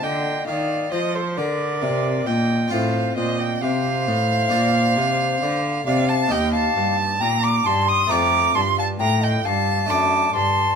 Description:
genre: classical, baroque-style sonata movement with continuo.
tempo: 67 BPM.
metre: 4/4.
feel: straight.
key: unclear.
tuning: A4 = 440 Hz.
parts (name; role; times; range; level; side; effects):
alto recorder; melody; 0.0-10.8 s; A4 to C6; -25 LUFS; left 7 dB; none.
rich violin; second line; 0.0-10.8 s; C5 to Eb6; -22 LUFS; right 5 dB; none.
harpsichord; accompaniment; 0.0-10.8 s; Eb2 to Bb4; -26 LUFS; left 3 dB; none.
rich cello; bass; 0.0-10.8 s; Eb2 to F3; -24 LUFS; right 1 dB; none.
room: moderate studio reverb, RT60 0.7 s.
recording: minimal, uncompressed stereo recording, lossy compression artefacts.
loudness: -18 LUFS.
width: side -6 dB against mid.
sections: 0.0-10.8 A section.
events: none.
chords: 0.0 Bb; 2.7 F/A; 4.5 Bb; 6.3 Eb; 8.1 F; 9.9 D/F#.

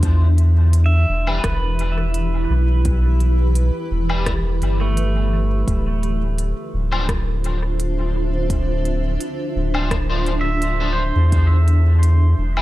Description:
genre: ambient dub.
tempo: 85 BPM.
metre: 4/4.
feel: straight.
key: unclear.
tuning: A4 = 440 Hz.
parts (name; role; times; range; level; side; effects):
granular cloud pad; sustained chords; 0.0-12.6 s; D3 to B5; -26 LUFS; right 1 dB; built-in reverb.
soft dub sub bass; bass; 0.0-12.6 s; D1 to E2; -17 LUFS; equal; tube saturation.
electronic kick drum; drums; 0.0-11.5 s; none; -24 LUFS; equal; none.
organic electronic drum kit; drums; 0.0-12.6 s; hi-hat, rim click, woodblock; -30 LUFS; equal; dub echo.
pedal steel guitar; arpeggios; 0.9-11.5 s; A3 to E5; -28 LUFS; right 3 dB; analog delay.
electric guitar at the edge of break-up; stabs; 1.3-12.6 s; F3 to C5; -30 LUFS; left 3 dB; ensemble chorus, dub echo.
room: little or no reverb.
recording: echo-heavy mix.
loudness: -16 LUFS.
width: side -16 dB against mid.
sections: 0.0-12.6 A section.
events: none.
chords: 0.0 Em; 5.7 Dm7; 11.3 Em.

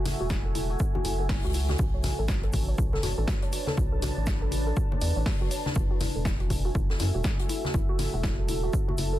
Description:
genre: deep house.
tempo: 121 BPM.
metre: 4/4.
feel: swing 60% on 16ths.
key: F# minor.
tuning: A4 = 441 Hz.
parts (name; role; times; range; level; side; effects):
deep dark ambient pad; sustained chords; 0.0-9.2 s; D4 to A5; -35 LUFS; right 1 dB; chorus, built-in reverb, sidechain pumping.
rubbery square bass; bass; 0.0-9.2 s; E1 to F#2; -29 LUFS; equal; sidechain pumping.
warbly dusty pluck; arpeggios; 0.1-9.2 s; E4 to A5; -36 LUFS; left 1 dB; chorus, sidechain pumping, tape echo.
open jazz drum kit; drums; 0.1-9.1 s; hi-hat, shaker, snare drum; -40 LUFS; left 1 dB; sidechain pumping on hats, high-pass filter on hats, high-pass filter on snare, sidechain pumping on perc, high-pass filter on perc, high-pass filter on room.
punchy analog drum machine; drums; 0.1-9.1 s; hi-hat, snare drum; -36 LUFS; equal; none.
congas; percussion; 0.1-9.0 s; none; -36 LUFS; left 2 dB; sidechain pumping on perc.
electronic kick drum; drums; 0.3-8.9 s; none; -28 LUFS; equal; none.
room: studio reverb.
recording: dense, heavily limited modern master.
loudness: -25 LUFS.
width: side -14 dB against mid.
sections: 0.0-9.2 A section.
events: none.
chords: 0.0 F#m9; 1.8 Bm9; 5.8 F#m9.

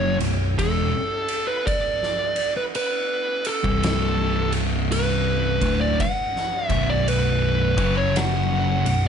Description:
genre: stoner and doom metal.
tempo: 55 BPM.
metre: 4/4.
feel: swing 64% on 8ths.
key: B minor.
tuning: A4 = 441 Hz.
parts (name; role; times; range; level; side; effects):
fuzz lead guitar; melody; 0.0-9.1 s; A4 to F#5; -24 LUFS; right 1 dB; distortion, analog delay.
thick fuzz guitar; riff; 0.0-9.1 s; B1 to F#3; -23 LUFS; equal; distortion.
overdriven picked electric bass; bass; 0.0-9.1 s; B0 to F#1; -25 LUFS; equal; none.
oversized low-tuned drum kit; drums; 0.2-9.0 s; kick drum, ride cymbal, snare drum; -28 LUFS; equal; none.
room: studio ambience.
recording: nothing above 10.7 kHz.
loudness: -20 LUFS.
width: side -7 dB against mid.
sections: 0.0-9.1 A section.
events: none.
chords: 0.0 B5; 3.6 C5; 5.5 Bm; 7.6 F#5.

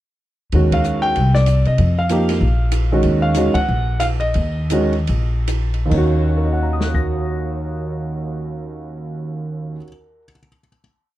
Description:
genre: jazz piano trio.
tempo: 134-191 BPM.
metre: 4/4.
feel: swing 61% on 8ths.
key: Eb minor.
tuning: A4 = 439 Hz.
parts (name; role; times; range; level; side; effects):
warm concert grand piano; melody; 0.5-10.8 s; Eb2 to Bb6; -20 LUFS; right 1 dB; none.
upright bass; bass; 0.5-9.8 s; Bb1 to C3; -18 LUFS; equal; none.
open jazz drum kit; drums; 0.5-7.1 s; crash cymbal, hi-hat, kick drum, ride cymbal, snare drum; -27 LUFS; equal; none.
room: little or no reverb.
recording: dry, close 1970s-style studio recording.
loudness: -16 LUFS.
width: side -14 dB against mid.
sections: 0.5-5.9 A section; 5.9-9.5 final chord.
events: band accent 0.7, 3.5; slowing down 3.0-5.9.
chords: 0.5 Ebm7; 1.2 Csus2; 1.8 F9sus4; 2.4 Ebm7.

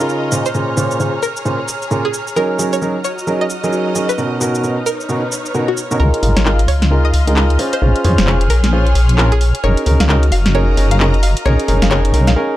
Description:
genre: UK garage, two-step garage.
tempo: 132 BPM.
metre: 4/4.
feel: swing 61% on 16ths.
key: unclear.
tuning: A4 = 439 Hz.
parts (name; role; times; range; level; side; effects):
warm analog pad; sustained chords; 0.0-12.4 s; F6; -29 LUFS; equal; chorus.
clear baby grand piano; stabs; 0.0-12.6 s; Bb2 to C5; -18 LUFS; right 1 dB; low-pass filter, digital delay.
garage drum kit; drums; 0.0-12.3 s; cabasa, handclaps, hi-hat, snare drum; -20 LUFS; equal; studio ambience.
clear studio string section; texture; 0.0-12.4 s; Eb4 to C6; -25 LUFS; left 1 dB; none.
string-like resonator pluck; melody; 0.5-12.3 s; Gb4 to F5; -23 LUFS; equal; chorus, dub echo.
deep soft wobble bass; bass; 6.0-12.4 s; F1 to F2; -13 LUFS; equal; chorus, tube saturation.
room: light reverb.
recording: dark, warm production.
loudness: -13 LUFS.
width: side -14 dB against mid.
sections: 0.0-6.0 A section; 6.0-12.6 B section.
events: build-up 6.0-12.6; filter sweep on grand piano 6.0-12.6; break 12.4.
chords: 0.3 Bbm9; 2.4 Gb6; 4.2 Cbmaj9; 6.0 Db69; 7.6 Bbm9; 9.6 Gb6; 11.5 Cbmaj9.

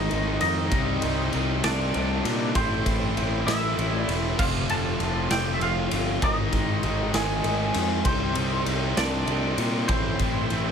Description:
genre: quiet-loud alternative rock.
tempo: 65 BPM (dotted quarters).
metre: 6/8.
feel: straight.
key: unclear.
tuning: A4 = 442 Hz.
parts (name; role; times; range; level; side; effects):
twangy electric guitar; melody; 0.0-10.7 s; Ab3 to A5; -29 LUFS; equal; lush chorus.
distorted electric guitar; riff; 0.0-10.7 s; Ab2 to F4; -32 LUFS; right 15 dB; overdrive.
fuzz guitar; riff; 0.0-10.7 s; Ab2 to F4; -31 LUFS; left 14 dB; distortion.
fuzz guitar; riff; 0.0-10.7 s; F2 to C4; -32 LUFS; equal; distortion.
fuzz picked electric bass; bass; 0.0-10.7 s; E1 to Bb2; -29 LUFS; equal; overdrive.
raw garage drum kit; drums; 0.1-10.6 s; crash cymbal, kick drum, ride cymbal, snare drum; -28 LUFS; equal; none.
room: light reverb.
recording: none.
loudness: -22 LUFS.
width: side -7 dB against mid.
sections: 0.0-10.7 A section.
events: none.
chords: 0.0 Ab; 0.7 Cm; 2.6 Am; 4.4 F; 6.2 Ab; 8.1 Cm; 9.9 Am.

